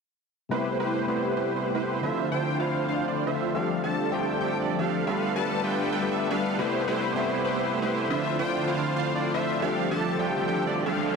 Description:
future bass; 158 BPM; 4/4; half-time; A minor; A4 = 442 Hz
overdriven tine electric piano; accompaniment; 0.5-11.2 s; C3 to G4; -30 LUFS; moving between left 7 dB and right 2 dB; auto-pan, tape echo
big bright polysynth; riff; 0.5-11.1 s; D3 to A5; -26 LUFS; right 1 dB; chorus, tape echo
riser; sound effects; 10.0-11.2 s; -36 LUFS; right 1 dB
moderate huge ambient reverb, RT60 4.8 s; dense, heavily limited modern master; -24 LUFS; side -5 dB against mid
0.5-11.2 A section
filter sweep on analog polysynth 0.5-11.2; riser 10.0-11.2
0.5 Am9; 2.0 Dm7; 3.5 F6; 5.1 G7; 6.6 Am9; 8.1 Dm7; 9.6 F6

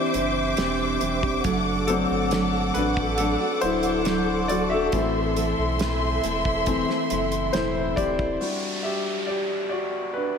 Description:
pop ballad; 69 BPM; 4/4; straight; A4 = 438 Hz
clear concert grand piano; accompaniment; 0.0-10.4 s; E3 to E5; -26 LUFS; left 4 dB; wide subtle chorus
warm studio string section; sustained chords; 0.0-8.4 s; A4 to D6; -26 LUFS; equal
picked steel-string acoustic guitar; arpeggios; 0.0-8.4 s; A2 to G4; -29 LUFS; right 5 dB
sub bass with octave; bass; 0.1-8.4 s; D1 to B1; -31 LUFS; equal
damped 70s drum kit; drums; 0.1-8.4 s; hi-hat, kick drum, snare drum; -31 LUFS; right 1 dB
downlifter; sound effects; 8.4-10.4 s; -32 LUFS; right 1 dB
wet plate reverb, RT60 2.6 s; dreamy mix soaked in reverb; -22 LUFS; side -6 dB against mid
0.0-8.4 A section; 8.4-10.4 B section
grand piano solo 0.0-8.4, 8.4-10.4
0.0 Cadd9; 1.4 D/F#; 8.4 Gmaj13

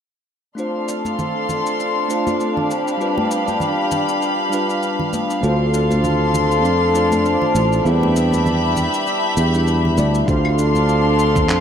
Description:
sunset chillout; 99 BPM; 4/4; swing 56% on 16ths; D dorian; A4 = 440 Hz
bell-like tine electric piano; accompaniment; 0.6-11.6 s; G3 to E5; -24 LUFS; moving between left 2 dB and right 5 dB; auto-pan, low-pass filter, digital delay
dark studio string section; sustained chords; 0.6-11.6 s; D4 to C6; -19 LUFS; left 2 dB
concert harp; arpeggios; 0.6-11.6 s; B3 to B4; -26 LUFS; right 3 dB; vintage 12-bit sampler grit, low-pass filter, digital delay
electronic cabasa, claves and handclaps; drums; 0.6-11.6 s; -30 LUFS; left 2 dB; small room ambience
congas; percussion; 1.1-11.5 s; -27 LUFS; equal
fretless electric bass; bass; 5.4-11.6 s; A1 to F2; -18 LUFS; right 1 dB; tube saturation
electronic kick drum; drums; 10.3-11.5 s; -22 LUFS; right 1 dB; small room ambience
moderate plate reverb, RT60 2.1 s; rough home demo mix; -16 LUFS; side -8 dB against mid
0.6-10.3 A section; 10.3-11.6 B section
filter sweep on harp 0.6-10.3; filter sweep on tine electric piano 10.3-11.6
0.6 Dm7; 2.7 G7; 5.4 Dm7; 7.9 Em7; 10.3 Dm7

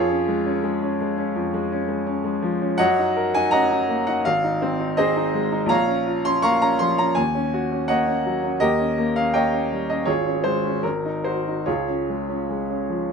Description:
classical, romantic character piece for solo piano; 82 BPM; 4/4; rubato; Db major; A4 = 439 Hz
clear grand piano; solo; 0.0-13.1 s; Ab1 to Db6; -20 LUFS; equal
light reverb; minimal, uncompressed stereo recording; -20 LUFS; side -6 dB against mid
0.0-13.1 A section
0.0 Db/F; 2.8 Ebm7/Gb; 4.3 Ab; 5.7 Bbm; 7.2 Ebm7; 8.6 Eb7; 10.1 Db/Ab; 10.8 Ab7; 11.7 Db

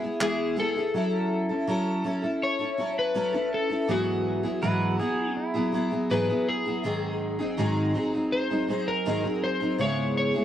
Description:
pop; 81 BPM; 4/4; straight; F# minor; A4 = 441 Hz
picked steel-string acoustic guitar; accompaniment; 0.0-10.4 s; G#2 to A4; -26 LUFS; equal; double-tracked left and right
electric slide guitar; melody; 0.2-10.4 s; F#4 to C#5; -29 LUFS; left 3 dB; tape echo
pedal steel guitar; second line; 4.6-5.9 s; E4 to B4; -31 LUFS; right 3 dB
moderate studio reverb, RT60 0.8 s; worn, warbling old tape, cassette tape, warbly pitch drift; -24 LUFS; side -10 dB against mid
0.9-10.4 A section
0.0 E; 0.9 F#m7; 3.9 Eadd9/G#; 6.8 G#7; 9.8 C#m7/G#

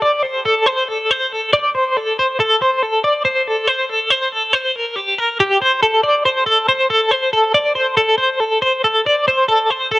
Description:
rock; 279 BPM (eighths); 7/8; straight; A4 = 440 Hz
twelve-string electric guitar; solo; 0.0-10.0 s; G4 to D5; -13 LUFS; equal; tremolo, cassette tape, tape echo
light reverb; home recording on cassette; -13 LUFS; side -20 dB against mid
0.0-10.0 A section

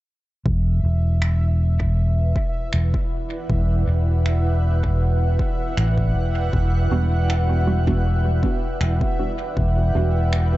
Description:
ambient dub; 79 BPM; 4/4; swing 54% on 16ths; E minor; A4 = 441 Hz
granular cloud pad; sustained chords; 1.1-10.6 s; E4 to G5; -28 LUFS; right 1 dB; built-in reverb
fingered electric bass; bass; 0.5-10.6 s; E1 to A1; -18 LUFS; equal; tube saturation
electronic kick drum; drums; 0.5-9.7 s; -24 LUFS; equal; overdrive
bubbling stepped-filter texture; texture; 0.7-10.6 s; E5; -34 LUFS; left 1 dB; chorus, built-in reverb
finger snaps; drums; 1.2-10.5 s; -33 LUFS; right 1 dB; dub echo
filtered dub chord stab; stabs; 6.9-10.1 s; G3 to F#4; -28 LUFS; right 4 dB; phaser, dub echo
little or no reverb; dark, warm production, nothing above 7.9 kHz; -18 LUFS; side -17 dB against mid
0.5-10.6 A section
0.5 Em7

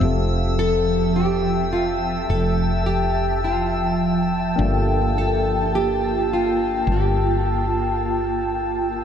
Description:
chillout; 105 BPM; 4/4; swing 56% on 16ths; G dorian; A4 = 440 Hz
soft electric-piano-like synth keys; accompaniment; 0.0-9.0 s; Bb3 to E5; -29 LUFS; moving between left 3 dB and right 4 dB; chorus, phaser, auto-pan, low-pass filter, tape echo
ethereal airy pad; sustained chords; 0.0-9.0 s; F3 to A5; -22 LUFS; equal; ensemble chorus, built-in reverb
woody fretless electric bass; bass; 0.0-9.0 s; F1 to G1; -24 LUFS; equal; tube saturation
drifting glass-harmonics texture; texture; 0.0-9.0 s; E6; -35 LUFS; equal; chorus, built-in reverb
nylon-string guitar; melody; 0.6-8.6 s; F4 to A4; -25 LUFS; equal; wide subtle chorus, tape echo
wet plate reverb, RT60 3.6 s; dreamy mix soaked in reverb; -18 LUFS; side -8 dB against mid
0.0-9.0 A section
filter sweep on synth keys 0.0-9.0
0.0 Fmaj9; 4.6 Gm9

